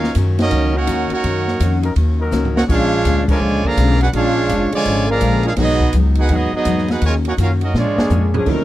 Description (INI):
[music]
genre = jazz, big band swing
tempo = 166 BPM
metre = 4/4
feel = swing 63% on 8ths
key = Eb minor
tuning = A4 = 438 Hz
[part]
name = brilliant trumpet section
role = melody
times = 0.0-8.3 s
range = Ab3 to Bb5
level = -21 LUFS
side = right 2 dB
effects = none
[part]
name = warm trombone section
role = second line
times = 0.0-8.3 s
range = D3 to Gb4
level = -21 LUFS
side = right 3 dB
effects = none
[part]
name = picked steel-string acoustic guitar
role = accompaniment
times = 0.0-8.6 s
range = Ab2 to Gb4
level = -23 LUFS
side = left 6 dB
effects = none
[part]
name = clear trombone section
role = sustained chords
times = 0.0-8.4 s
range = D3 to Bb4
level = -26 LUFS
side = left 3 dB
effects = none
[part]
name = upright bass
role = bass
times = 0.0-8.6 s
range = F1 to Bb2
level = -18 LUFS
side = equal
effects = none
[part]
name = open jazz drum kit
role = drums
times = 0.0-8.6 s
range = crash cymbal, hi-hat, kick drum, ride cymbal, snare drum, toms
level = -22 LUFS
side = equal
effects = none
[part]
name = mellow saxophone section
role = melody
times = 8.3-8.6 s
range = F3 to Bb4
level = -19 LUFS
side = left 2 dB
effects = none
[part]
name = dark baby grand piano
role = accompaniment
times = 8.5-8.6 s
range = D3 to Fb4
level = -19 LUFS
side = right 9 dB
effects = none
[sound]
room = small room ambience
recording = dry, close 1970s-style studio recording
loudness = -14 LUFS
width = side -14 dB against mid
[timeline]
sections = 0.0-8.5 A section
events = drum fill 2.3-2.7, 7.7-8.5; band accent 3.2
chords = 0.0 Ebm7; 2.7 Bb7#9; 5.6 Abm7; 7.0 Ebm7; 7.7 Bb7#9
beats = 0.16 0.52 0.88 | 1.24 1.60 1.96 2.32 | 2.69 3.05 3.41 3.77 | 4.13 4.49 4.85 5.21 | 5.57 5.93 6.30 6.66 | 7.02 7.38 7.74 8.10 | 8.46